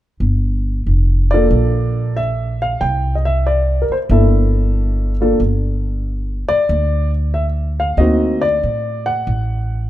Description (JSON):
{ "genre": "jazz", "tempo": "93 BPM", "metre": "4/4", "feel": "swing 69% on 8ths", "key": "G dorian", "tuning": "A4 = 442 Hz", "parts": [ { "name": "upright bass", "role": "bass", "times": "0.2-9.9 s", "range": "F1 to A2", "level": "-16 LUFS", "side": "equal", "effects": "none" }, { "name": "warm baby grand piano", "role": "melody", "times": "1.3-9.9 s", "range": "Bb3 to G5", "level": "-18 LUFS", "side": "left 1 dB", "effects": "none" } ], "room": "light reverb", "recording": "none", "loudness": "-14 LUFS", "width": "side -14 dB against mid", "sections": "0.2-9.9 A section", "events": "none", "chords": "0.2 Gm9; 2.8 C13; 5.4 G5; 8.0 D7b9b13" }